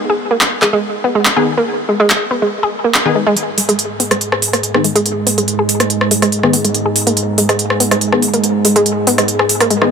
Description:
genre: driving peak-time techno.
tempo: 142 BPM.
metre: 4/4.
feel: straight.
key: G# minor.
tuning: A4 = 440 Hz.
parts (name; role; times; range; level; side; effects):
analog pluck; riff; 0.1-9.8 s; G#3 to G#4; -16 LUFS; equal; chorus, overdrive, tape echo.
techno drum kit; drums; 0.4-9.9 s; handclaps, hi-hat, rim click; -15 LUFS; equal; high-pass filter on snare, high-pass filter on hats, high-pass filter on room.
rave stab; stabs; 1.4-9.9 s; D#3 to G#4; -21 LUFS; left 3 dB; chorus, built-in reverb, digital delay.
analog drone; drone; 3.8-9.9 s; G#2 to G#3; -18 LUFS; right 2 dB; chorus.
room: moderate huge ambient reverb, RT60 7.6 s.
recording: high-pass filter.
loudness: -11 LUFS.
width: side -6 dB against mid.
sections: 0.0-3.4 A section; 3.4-9.9 B section.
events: filter sweep on synth stab 0.0-3.4; build-up 3.4-9.9.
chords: 0.0 G#m.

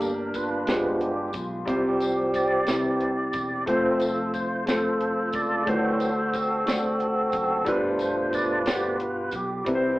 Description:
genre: slow gospel.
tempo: 60 BPM (dotted quarters).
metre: 6/8.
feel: straight.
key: unclear.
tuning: A4 = 439 Hz.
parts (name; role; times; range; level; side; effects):
warm grand piano; accompaniment; 0.0-10.0 s; G2 to D5; -27 LUFS; left 1 dB; none.
tonewheel organ; sustained chords; 0.0-10.0 s; B2 to D5; -25 LUFS; right 1 dB; fast rotary speaker, overdrive.
fingered electric bass; bass; 0.0-10.0 s; E1 to D2; -38 LUFS; equal; none.
tight funk drum kit; drums; 0.0-9.8 s; hi-hat, kick drum, snare drum; -31 LUFS; equal; none.
tambourine; percussion; 0.0-9.6 s; none; -43 LUFS; left 4 dB; none.
room: wet studio ambience, RT60 0.5 s.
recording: band playing live in one room, AM radio sound.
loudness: -23 LUFS.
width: side -18 dB against mid.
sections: 0.0-10.0 A section.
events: tonewheel organ solo 0.0-10.0.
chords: 0.0 Gm; 0.7 G7b9; 1.7 Csus4; 2.7 C; 3.7 F; 5.7 D7; 7.7 G7.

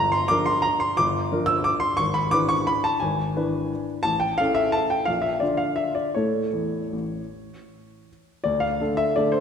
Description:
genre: classical, piano waltz.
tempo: 151-187 BPM.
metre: 3/4.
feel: rubato.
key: unclear.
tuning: A4 = 441 Hz.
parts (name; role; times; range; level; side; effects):
warm grand piano; solo; 0.0-9.4 s; G1 to E6; -21 LUFS; left 1 dB; none.
room: wet concert hall reverb, RT60 1.8 s.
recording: recorded in a church or concert hall.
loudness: -21 LUFS.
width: side -7 dB against mid.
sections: 0.0-8.4 A section.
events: none.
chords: 0.0 Gm7; 2.0 E7/G#; 4.0 A; 5.1 Bb; 6.2 A; 8.4 Dm.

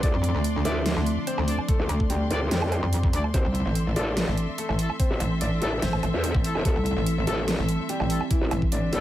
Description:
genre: heavy wobble dubstep.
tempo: 145 BPM.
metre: 4/4.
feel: half-time.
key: unclear.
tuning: A4 = 440 Hz.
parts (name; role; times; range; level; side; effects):
warm grand piano; melody; 0.0-9.0 s; D3 to E5; -33 LUFS; left 2 dB; digital delay.
evolving wavetable pad; sustained chords; 0.0-9.0 s; D3 to C4; -34 LUFS; right 2 dB; chorus, built-in reverb, phaser, sidechain pumping.
growl bass; bass; 0.0-9.0 s; E1 to F2; -26 LUFS; equal; chorus, overdrive.
dubstep drum kit; drums; 0.0-9.0 s; hi-hat, snare drum, woodblock; -31 LUFS; right 2 dB; overdrive.
electronic kick drum; drums; 0.0-8.7 s; none; -24 LUFS; equal; overdrive.
rich studio string section; texture; 0.0-9.0 s; D4 to C6; -35 LUFS; left 2 dB; sidechain pumping.
metallic wobble bass; bass; 0.1-8.9 s; A1 to F2; -25 LUFS; equal; chorus, overdrive.
clear brass ensemble; stabs; 0.7-9.0 s; A3 to D5; -36 LUFS; left 3 dB; none.
room: little or no reverb.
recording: none.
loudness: -22 LUFS.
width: side -13 dB against mid.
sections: 0.0-9.0 A section.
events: none.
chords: 0.0 Dm7; 3.3 Am.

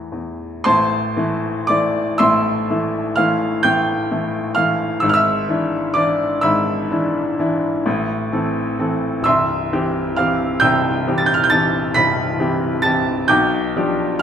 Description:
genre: classical, romantic nocturne for solo piano.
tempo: 35-46 BPM (dotted quarters).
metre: 9/8.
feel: rubato.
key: A minor.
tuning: A4 = 440 Hz.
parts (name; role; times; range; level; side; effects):
clear upright piano; solo; 0.0-14.2 s; C1 to B6; -16 LUFS; equal; none.
room: moderate recital hall reverb, RT60 1.4 s.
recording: none.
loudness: -16 LUFS.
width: side -8 dB against mid.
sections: 0.7-14.2 A section.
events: none.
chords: 0.0 Am; 5.0 E7/G#; 7.9 Am; 9.3 C; 13.3 G7/B.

